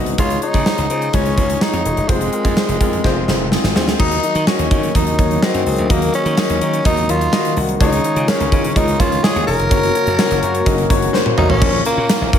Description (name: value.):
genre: 1980s-style pop.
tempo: 126 BPM.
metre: 4/4.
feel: straight.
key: unclear.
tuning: A4 = 440 Hz.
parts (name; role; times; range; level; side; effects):
warm baby grand piano; accompaniment; 0.0-12.4 s; Bb2 to Bb5; -20 LUFS; left 6 dB; none.
glassy slap bass; bass; 0.0-12.4 s; Eb1 to Eb3; -21 LUFS; equal; none.
gated 80s drum kit; drums; 0.1-12.4 s; crash cymbal, hi-hat, kick drum, snare drum, tambourine, toms; -18 LUFS; right 1 dB; none.
raspy tenor saxophone; melody; 0.2-12.4 s; Ab3 to Bb4; -20 LUFS; equal; none.
warm analog pad; sustained chords; 4.0-12.4 s; Db3 to Gb4; -26 LUFS; right 2 dB; chorus.
synth chime; second line; 6.9-12.4 s; Db5 to Eb6; -29 LUFS; right 2 dB; none.
room: light reverb.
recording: none.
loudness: -14 LUFS.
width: side -9 dB against mid.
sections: 0.0-4.0 A section; 4.0-11.6 B section.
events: drum fill 3.0-4.0, 11.1-11.6; grand piano fill 10.7-11.6.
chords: 0.2 Dbadd9; 2.1 Fm; 4.0 Ebm; 7.8 Dbadd9; 9.7 Gb; 11.6 Bbm.